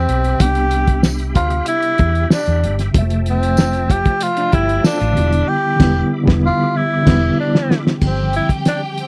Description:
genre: lush 1970s-style soul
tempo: 95 BPM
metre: 4/4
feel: straight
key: C major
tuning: A4 = 441 Hz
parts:
  - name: breathy tenor saxophone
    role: melody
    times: 0.0-9.1 s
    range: C4 to G4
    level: -21 LUFS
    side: equal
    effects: none
  - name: reed electric piano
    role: accompaniment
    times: 0.0-9.1 s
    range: C3 to E5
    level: -23 LUFS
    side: equal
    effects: fast tremolo
  - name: bright tonewheel organ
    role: sustained chords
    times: 0.0-8.0 s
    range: F3 to D6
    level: -33 LUFS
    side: equal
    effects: slow rotary speaker, chorus vibrato
  - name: hollow-body short-scale fingered electric bass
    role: bass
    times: 0.0-8.5 s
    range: E1 to E2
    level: -21 LUFS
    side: equal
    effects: none
  - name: cloth-damped thuddy drum kit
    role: drums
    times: 0.1-9.1 s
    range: crash cymbal, hi-hat, kick drum, snare drum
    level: -18 LUFS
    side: equal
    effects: none
  - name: tambourine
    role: percussion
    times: 1.0-5.0 s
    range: none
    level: -34 LUFS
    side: equal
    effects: none
  - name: electric guitar through a small old amp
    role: riff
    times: 4.4-5.3 s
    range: D4 to A4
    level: -27 LUFS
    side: equal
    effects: none
  - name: warm studio string section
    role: second line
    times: 8.0-9.1 s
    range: G4 to G5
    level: -28 LUFS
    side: equal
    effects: none
room: little or no reverb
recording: dry, close 1970s-style studio recording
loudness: -16 LUFS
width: mono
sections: 0.0-8.0 A section; 8.0-9.1 B section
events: band accent 5.5-8.0; drum fill 6.7-8.0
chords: 0.0 Cmaj7; 2.9 Fmaj7; 5.2 Em7; 8.0 G7sus4

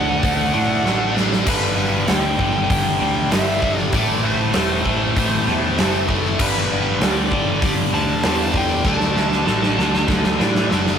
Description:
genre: hard rock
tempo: 98 BPM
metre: 4/4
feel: straight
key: unclear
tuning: A4 = 438 Hz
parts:
  - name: bluesy overdriven lead guitar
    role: melody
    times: 0.0-10.1 s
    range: B4 to A5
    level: -24 LUFS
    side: equal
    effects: distortion
  - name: cranked stack guitar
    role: riff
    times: 0.0-11.0 s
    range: G2 to D4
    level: -22 LUFS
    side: equal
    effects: overdrive, phaser
  - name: heavy high-gain guitar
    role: riff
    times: 0.0-11.0 s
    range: G2 to D4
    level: -25 LUFS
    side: equal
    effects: distortion
  - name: modern bright picked electric bass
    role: bass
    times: 0.0-11.0 s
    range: E1 to A2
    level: -24 LUFS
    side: equal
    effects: none
  - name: huge arena drum kit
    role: drums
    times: 0.2-11.0 s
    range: crash cymbal, hi-hat, kick drum, snare drum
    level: -20 LUFS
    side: equal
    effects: none
room: moderate small room reverb, RT60 0.5 s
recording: rough rehearsal-room recording, tube saturation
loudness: -16 LUFS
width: side -8 dB against mid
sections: 0.0-11.0 A section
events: drum fill 0.9-1.5, 8.9-11.0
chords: 0.0 D; 1.5 G; 3.9 Am; 6.4 G; 8.9 D

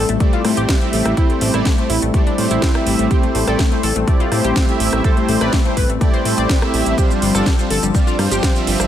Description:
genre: progressive house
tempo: 124 BPM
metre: 4/4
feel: straight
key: A minor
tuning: A4 = 440 Hz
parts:
  - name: warm analog pad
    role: sustained chords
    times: 0.0-8.9 s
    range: F3 to C4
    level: -24 LUFS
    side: left 4 dB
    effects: chorus, sidechain pumping
  - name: analog pluck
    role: arpeggios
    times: 0.0-8.8 s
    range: G3 to D5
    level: -22 LUFS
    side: left 4 dB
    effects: chorus, sidechain pumping, digital delay
  - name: fat analog bass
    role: bass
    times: 0.0-8.9 s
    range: G1 to A2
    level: -20 LUFS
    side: equal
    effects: sidechain pumping
  - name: house drum kit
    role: drums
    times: 0.1-8.9 s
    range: hi-hat, rim click, shaker, snare drum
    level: -23 LUFS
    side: right 1 dB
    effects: sidechain pumping on hats, sidechain pumping on perc
  - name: soft supersaw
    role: stabs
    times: 0.2-8.9 s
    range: G3 to E5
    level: -21 LUFS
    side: right 3 dB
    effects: sidechain pumping, digital delay
  - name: electronic kick drum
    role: drums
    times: 0.2-8.5 s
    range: none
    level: -16 LUFS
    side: equal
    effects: none
room: little or no reverb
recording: none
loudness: -14 LUFS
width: side -11 dB against mid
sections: 0.0-8.9 A section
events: none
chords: 0.0 Am7; 7.0 G7sus4

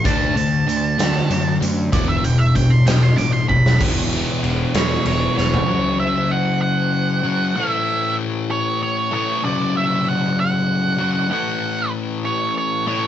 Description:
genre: quiet-loud alternative rock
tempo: 64 BPM (dotted quarters)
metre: 6/8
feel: straight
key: A major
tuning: A4 = 442 Hz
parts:
  - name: octave-fuzz lead guitar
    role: melody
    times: 0.0-13.1 s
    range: C#5 to D6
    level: -22 LUFS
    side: right 4 dB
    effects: distortion
  - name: sludgy distorted guitar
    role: riff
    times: 0.0-13.1 s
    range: E2 to D4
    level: -20 LUFS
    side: left 2 dB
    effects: overdrive
  - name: sludgy distorted guitar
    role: riff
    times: 0.0-5.7 s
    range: E2 to D4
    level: -25 LUFS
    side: right 6 dB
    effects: overdrive
  - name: fuzz picked electric bass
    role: bass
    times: 0.1-5.6 s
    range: E1 to F#2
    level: -24 LUFS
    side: equal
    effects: overdrive
  - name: big rock drum kit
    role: drums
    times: 0.1-5.7 s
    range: crash cymbal, hi-hat, kick drum, ride cymbal, snare drum, toms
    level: -23 LUFS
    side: equal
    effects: none
room: moderate stone room reverb, RT60 1.3 s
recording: band playing live in one room, nothing above 7.8 kHz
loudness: -16 LUFS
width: side -10 dB against mid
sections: 0.0-3.8 A section; 3.8-5.7 B section; 5.7-13.1 C section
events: lead electric guitar solo 0.0-3.8; drum fill 3.5-3.8, 5.4-5.7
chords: 0.0 D; 1.9 E5; 5.7 F#5; 7.6 A5; 9.4 F#5; 11.3 A5

